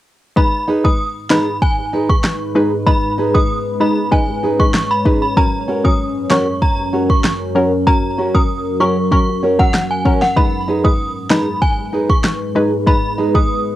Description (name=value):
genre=dancehall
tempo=96 BPM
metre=4/4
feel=straight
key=G# minor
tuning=A4 = 440 Hz
part: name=synth chime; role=melody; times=0.4-13.5 s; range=F#5 to D#6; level=-20 LUFS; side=right 1 dB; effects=ensemble chorus, tremolo, cassette tape, tape echo
part: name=hollow square pluck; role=accompaniment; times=0.4-13.8 s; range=F#3 to B4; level=-20 LUFS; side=left 3 dB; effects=chorus, cassette tape
part: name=deep dark ambient pad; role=sustained chords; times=1.3-13.8 s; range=F#2 to B4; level=-22 LUFS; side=left 1 dB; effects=chorus, built-in reverb, sidechain pumping, cassette tape
part: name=deep house drum kit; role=drums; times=0.4-13.5 s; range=handclaps, kick drum, rim click, snare drum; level=-15 LUFS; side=equal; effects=none
part: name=nylon-string guitar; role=arpeggios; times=0.7-13.3 s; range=C#4 to B4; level=-18 LUFS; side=right 2 dB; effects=cassette tape
room=light reverb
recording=home recording on cassette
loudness=-13 LUFS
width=side -14 dB against mid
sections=0.4-13.8 A section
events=none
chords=0.4 G#m; 5.4 F#; 10.4 G#m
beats=| 0.37 0.99 1.62 2.24 | 2.87 3.49 4.12 4.74 | 5.37 5.99 6.62 7.24 | 7.87 8.49 9.12 9.74 | 10.37 10.99 11.62 12.24 | 12.87 13.49